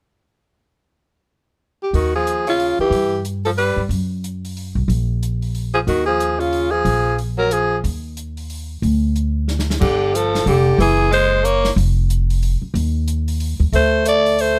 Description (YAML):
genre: jazz, small-group swing and bop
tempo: 183 BPM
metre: 3/4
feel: swing 62% on 8ths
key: G minor from 9.8 s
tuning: A4 = 440 Hz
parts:
  - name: growling alto saxophone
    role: melody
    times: 1.8-7.8, 9.8-11.7, 13.8-14.6 s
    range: F4 to D5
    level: -20 LUFS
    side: equal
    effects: none
  - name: clear tenor saxophone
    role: second line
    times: 1.9-7.8, 9.8-11.7, 13.7-14.6 s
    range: Db3 to Bb3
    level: -24 LUFS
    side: equal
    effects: none
  - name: upright bass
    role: bass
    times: 1.9-14.6 s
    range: F1 to G2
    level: -22 LUFS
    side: equal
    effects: none
  - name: open jazz drum kit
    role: drums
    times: 1.9-14.5 s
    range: crash cymbal, hi-hat, kick drum, snare drum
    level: -33 LUFS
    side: equal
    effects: none
room: little or no reverb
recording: close, detailed microphones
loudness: -18 LUFS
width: mono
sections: 1.9-9.8 A section; 9.8-14.6 B section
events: drum fill 9.5-9.8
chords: 0.9 N.C.; 1.9 Ebsus2; 2.9 G6; 3.9 B5; 4.9 Bb5; 5.9 Ebsus2; 6.9 Bb5; 7.8 N.C.; 9.8 Gsus2; 10.8 F#sus2; 11.8 N.C.; 13.7 D5